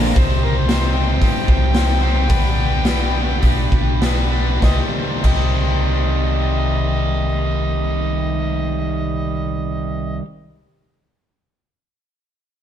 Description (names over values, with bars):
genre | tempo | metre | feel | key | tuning
classic rock | 97-115 BPM | 4/4 | straight | C minor | A4 = 442 Hz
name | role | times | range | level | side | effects
crunchy overdriven guitar | riff | 0.0-10.2 s | Bb2 to C5 | -24 LUFS | left 7 dB | spring reverb
overdriven electric guitar | riff | 0.0-10.2 s | Bb2 to C5 | -25 LUFS | right 7 dB | none
growling fingered electric bass | bass | 0.0-10.2 s | Bb1 to G2 | -20 LUFS | equal | overdrive
overdriven harmonica | melody | 0.2-10.2 s | Bb4 to G5 | -27 LUFS | left 1 dB | none
raw garage drum kit | drums | 0.2-5.4 s | crash cymbal, hi-hat, kick drum, snare drum | -19 LUFS | equal | none
room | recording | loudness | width
light reverb | band playing live in one room | -16 LUFS | side -10 dB against mid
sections
0.2-4.6 A section; 4.6-9.6 B section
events
slowing down 0.2-4.6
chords
0.2 Cm; 2.3 G/B; 4.6 Cm